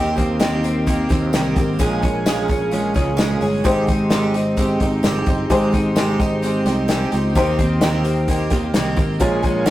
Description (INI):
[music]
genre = jangly indie pop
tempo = 130 BPM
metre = 4/4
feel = straight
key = Ab major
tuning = A4 = 440 Hz
[part]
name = picked twelve-string acoustic guitar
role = accompaniment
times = 0.0-9.7 s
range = Bb2 to Ab4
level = -22 LUFS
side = right 3 dB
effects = none
[part]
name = warm analog pad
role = sustained chords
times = 0.0-9.7 s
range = Ab3 to Db6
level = -32 LUFS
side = right 1 dB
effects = none
[part]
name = twelve-string electric guitar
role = arpeggios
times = 0.0-9.7 s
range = Bb2 to Ab4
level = -23 LUFS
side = left 1 dB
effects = none
[part]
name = fretless electric bass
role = bass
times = 0.0-9.7 s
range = G1 to Eb2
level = -23 LUFS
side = equal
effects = none
[part]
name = loose indie drum kit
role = drums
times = 0.2-9.7 s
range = hi-hat, kick drum, snare drum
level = -21 LUFS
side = equal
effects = none
[part]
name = tambourine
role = percussion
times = 0.2-9.7 s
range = none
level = -42 LUFS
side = left 6 dB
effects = none
[part]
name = warm upright piano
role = accompaniment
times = 3.6-9.7 s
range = Eb4 to Db5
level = -24 LUFS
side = left 2 dB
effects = none
[sound]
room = moderate studio reverb, RT60 0.7 s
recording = rough rehearsal-room recording, tube saturation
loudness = -16 LUFS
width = side -15 dB against mid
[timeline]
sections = 0.0-9.7 A section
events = none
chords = 0.0 Eb6; 1.8 Bbm7; 3.6 Abmaj7; 7.4 Eb6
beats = 0.41 0.87 1.33 | 1.80 2.26 2.72 3.19 | 3.65 4.11 4.58 5.04 | 5.50 5.97 6.43 6.89 | 7.36 7.82 8.28 8.75 | 9.21 9.67